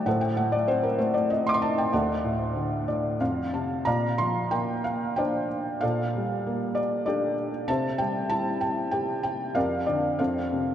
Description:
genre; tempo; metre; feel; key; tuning
classical, lyrical solo piano; 95 BPM; 3/4; uneven beats, rubato; Bb major from 3.9 s; A4 = 445 Hz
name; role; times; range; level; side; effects
felt-muted upright piano; solo; 0.0-10.7 s; D2 to D6; -24 LUFS; equal; none
room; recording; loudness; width
wet cathedral reverb, RT60 5.4 s; in a vast, echoing space; -24 LUFS; side -10 dB against mid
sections
0.0-3.9 A section; 3.9-10.7 B section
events
felt piano fill 2.5-3.9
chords
0.1 Adim; 1.9 D; 3.2 F; 3.9 Bbadd9; 5.8 Gmadd9/Bb; 7.7 C; 9.6 Bb/F; 10.2 F

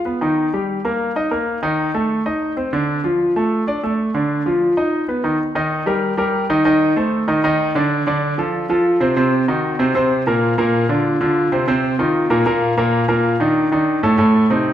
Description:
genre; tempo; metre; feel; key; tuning
jazz; 191 BPM; 4/4; straight; unclear; A4 = 440 Hz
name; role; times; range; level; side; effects
clear concert grand piano; solo; 0.1-14.7 s; A2 to Eb5; -15 LUFS; equal; none
room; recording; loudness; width
wet recital hall reverb, RT60 1.4 s; recorded in a church or concert hall; -15 LUFS; side -11 dB against mid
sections
0.0-5.4 A section; 5.4-14.7 B section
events
none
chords
0.4 Eb; 1.6 Cm69; 2.9 Dm; 4.8 B/D#; 5.4 Eb; 6.7 Cm69; 7.9 F6; 9.2 Ebm6; 10.4 Bbadd9; 11.7 F5; 12.3 N.C.; 12.9 Eb5; 14.2 Am

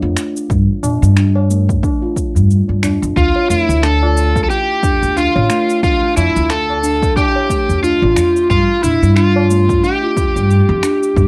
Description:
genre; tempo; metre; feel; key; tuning
organic downtempo; 90 BPM; 4/4; swing 58% on 16ths; D harmonic minor; A4 = 440 Hz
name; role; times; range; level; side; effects
steel tongue drum; arpeggios; 0.0-11.3 s; A3 to C#5; -23 LUFS; equal; cassette tape, tape echo
upright bass; bass; 0.0-11.3 s; A1 to Bb2; -17 LUFS; equal; sidechain pumping
electronic finger snaps and shaker; drums; 0.2-11.3 s; none; -28 LUFS; equal; overdrive, cassette tape
electronic kick drum; drums; 0.5-11.3 s; none; -20 LUFS; equal; overdrive, cassette tape
tabla; percussion; 0.8-10.3 s; none; -28 LUFS; equal; none
overdriven slide guitar; melody; 3.2-11.3 s; E4 to A4; -17 LUFS; equal; cassette tape, tape echo
room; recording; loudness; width
light reverb; home recording on cassette; -14 LUFS; mono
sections
0.0-11.3 A section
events
none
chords
0.0 G7(no3); 3.2 Dm; 8.5 G7(no3)

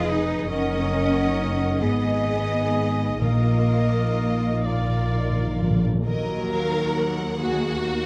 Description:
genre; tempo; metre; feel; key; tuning
classical, slow romantic movement for symphony orchestra; 41-48 BPM (dotted quarters); 6/8; rubato; Eb minor; A4 = 440 Hz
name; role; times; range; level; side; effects
rich studio violin section; melody; 0.0-8.1 s; D5 to Gb5; -38 LUFS; equal; none
hollow flute section; second line; 0.0-5.7 s; F5 to Ab5; -38 LUFS; equal; none
mellow clarinet; second line; 0.0-5.7 s; Ab4 to Bb4; -38 LUFS; equal; none
rich studio violin section; second line; 0.0-8.1 s; Gb4 to Eb5; -34 LUFS; equal; none
warm oboe; second line; 0.0-5.7 s; D5 to Eb5; -36 LUFS; equal; none
rich studio viola section; accompaniment; 0.0-8.1 s; Gb3 to Bb4; -35 LUFS; equal; none
warm French horn section; sustained chords; 0.0-6.1 s; Eb4 to Eb5; -34 LUFS; equal; none
concert harp; arpeggios; 0.0-8.1 s; F2 to Bb5; -34 LUFS; equal; none
rich studio cello section; bass; 0.0-8.1 s; Eb2 to Eb4; -30 LUFS; equal; none
warm studio double bass section; bass; 0.0-8.1 s; F1 to Eb2; -28 LUFS; equal; none
timpani; percussion; 3.2-6.0 s; Bb2; -29 LUFS; equal; none
room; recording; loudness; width
light reverb; none; -23 LUFS; mono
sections
0.0-6.1 A section; 6.1-8.1 B section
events
timpani fill 4.7-6.1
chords
0.0 Fm7b5; 0.5 Ebm/Gb; 1.8 Abm; 3.2 Bbsus4; 4.7 Bb; 6.1 Ebm

